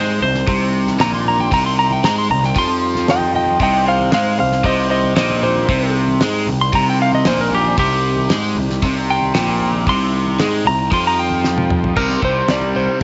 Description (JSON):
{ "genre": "psychedelic rock", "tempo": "115 BPM", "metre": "4/4", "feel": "straight", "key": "C minor", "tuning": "A4 = 441 Hz", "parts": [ { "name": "clean lap steel guitar", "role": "melody", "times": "0.0-13.0 s", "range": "G4 to C6", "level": "-21 LUFS", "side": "equal", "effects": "tape echo" }, { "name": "combo organ", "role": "sustained chords", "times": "0.0-13.0 s", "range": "G3 to C5", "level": "-32 LUFS", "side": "equal", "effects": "none" }, { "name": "overdriven electric guitar", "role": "riff", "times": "0.0-13.0 s", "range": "Bb2 to Ab3", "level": "-22 LUFS", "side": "equal", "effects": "phaser" }, { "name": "fuzz picked electric bass", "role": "bass", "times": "0.0-12.9 s", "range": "Bb1 to Ab2", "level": "-23 LUFS", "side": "equal", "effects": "overdrive" }, { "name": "congas", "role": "percussion", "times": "0.2-13.0 s", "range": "none", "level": "-35 LUFS", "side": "equal", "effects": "none" }, { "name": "damped 70s drum kit", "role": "drums", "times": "0.3-13.0 s", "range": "crash cymbal, hi-hat, kick drum, snare drum, toms", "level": "-25 LUFS", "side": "equal", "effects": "none" } ], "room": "moderate spring reverb, RT60 2.6 s", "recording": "nothing above 7.8 kHz", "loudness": "-16 LUFS", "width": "mono", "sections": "0.0-12.0 A section; 12.0-13.0 B section", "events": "electric slide guitar solo 0.0-12.0; drum fill 11.4-12.0", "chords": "0.0 Cm; 12.0 Cm7" }